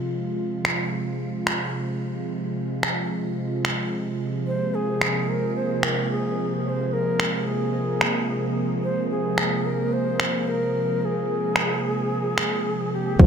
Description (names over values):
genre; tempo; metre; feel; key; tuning
organic downtempo; 110 BPM; 4/4; swing 56% on 16ths; F minor; A4 = 440 Hz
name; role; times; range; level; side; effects
warm analog pad; sustained chords; 0.0-13.3 s; C3 to F4; -26 LUFS; right 1 dB; chorus, sidechain pumping
electronic finger snaps and shaker; drums; 0.6-13.3 s; none; -26 LUFS; equal; none
breathy bright ney; melody; 4.5-13.3 s; G4 to Db5; -26 LUFS; equal; analog delay
handpan; arpeggios; 13.2-13.3 s; F3; -13 LUFS; left 1 dB; none
upright bass; bass; 13.2-13.3 s; F1; -19 LUFS; right 1 dB; sidechain pumping
electronic kick drum; drums; 13.2-13.3 s; none; -11 LUFS; equal; none
room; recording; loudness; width
wet huge ambient reverb, RT60 8.2 s; dreamy mix soaked in reverb; -22 LUFS; side -7 dB against mid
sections
0.0-13.2 A section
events
none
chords
0.0 Fm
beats
| 0.11 0.65 1.20 1.74 | 2.29 2.83 3.38 3.92 | 4.47 5.01 5.56 6.11 | 6.65 7.20 7.74 8.29 | 8.83 9.38 9.92 10.47 | 11.02 11.56 12.11 12.65 | 13.20